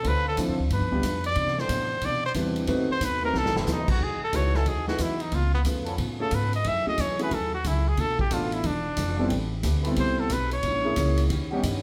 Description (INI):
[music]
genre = jazz, big band swing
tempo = 181 BPM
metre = 4/4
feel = swing 65% on 8ths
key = E major from 4.0 s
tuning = A4 = 443 Hz
[part]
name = warm trumpet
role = melody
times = 0.0-11.3 s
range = B3 to E5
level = -30 LUFS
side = equal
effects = none
[part]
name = hollow-body jazz guitar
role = accompaniment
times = 0.0-11.8 s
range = G2 to B4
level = -37 LUFS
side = equal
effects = none
[part]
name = muted trombone section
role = sustained chords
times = 0.0-11.6 s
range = E3 to D5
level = -40 LUFS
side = equal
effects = none
[part]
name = upright bass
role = bass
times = 0.0-11.8 s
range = E1 to C3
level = -30 LUFS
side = equal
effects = none
[part]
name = swinging big-band drum kit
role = drums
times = 0.0-11.7 s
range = crash cymbal, hi-hat, kick drum, ride cymbal, snare drum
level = -35 LUFS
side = equal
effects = none
[part]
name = warm grand piano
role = accompaniment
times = 0.4-11.6 s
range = F3 to C#5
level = -32 LUFS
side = equal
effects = none
[sound]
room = wet large studio reverb, RT60 1.1 s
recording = heard from further back in the room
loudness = -26 LUFS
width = mono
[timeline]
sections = 0.0-4.0 A section; 4.0-11.8 A section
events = trumpet solo 0.0-11.8; drum fill 3.3-3.7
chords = 0.0 Dm7; 0.7 G7; 1.4 Cmaj9; 2.7 B7b9; 4.0 Emaj9; 5.3 C#7b13; 6.6 F#m9; 8.0 Bm7b5; 8.6 E7b9; 9.3 Am9; 10.6 A#m7b5; 11.3 D#7alt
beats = | 0.04 0.37 0.70 1.03 | 1.36 1.69 2.02 2.35 | 2.68 3.01 3.34 3.67 | 4.00 4.33 4.66 4.99 | 5.32 5.66 5.99 6.32 | 6.65 6.98 7.31 7.64 | 7.97 8.31 8.64 8.97 | 9.30 9.63 9.97 10.30 | 10.63 10.96 11.30 11.63